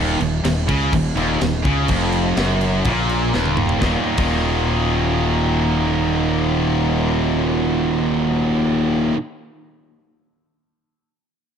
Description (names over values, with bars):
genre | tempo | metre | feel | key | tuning
heavy metal | 124 BPM | 4/4 | straight | Eb minor | A4 = 440 Hz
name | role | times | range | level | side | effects
heavy high-gain guitar | riff | 0.0-9.2 s | Eb2 to Eb3 | -23 LUFS | right 10 dB | distortion
high-gain distorted guitar | riff | 0.0-9.2 s | Eb2 to Eb3 | -23 LUFS | left 8 dB | distortion
tight distorted guitar | riff | 0.0-9.2 s | Eb2 to Eb4 | -23 LUFS | equal | distortion
fuzz fingered electric bass | bass | 0.0-9.1 s | Eb1 to Db2 | -22 LUFS | equal | overdrive
tight metal drum kit | drums | 0.2-4.3 s | crash cymbal, kick drum, snare drum, toms | -24 LUFS | equal | none
room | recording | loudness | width
light reverb, small room ambience | dark, warm production | -16 LUFS | side -7 dB against mid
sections
0.0-3.8 A section; 3.8-7.7 B section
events
drum fill 3.3-3.8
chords
0.0 Ebm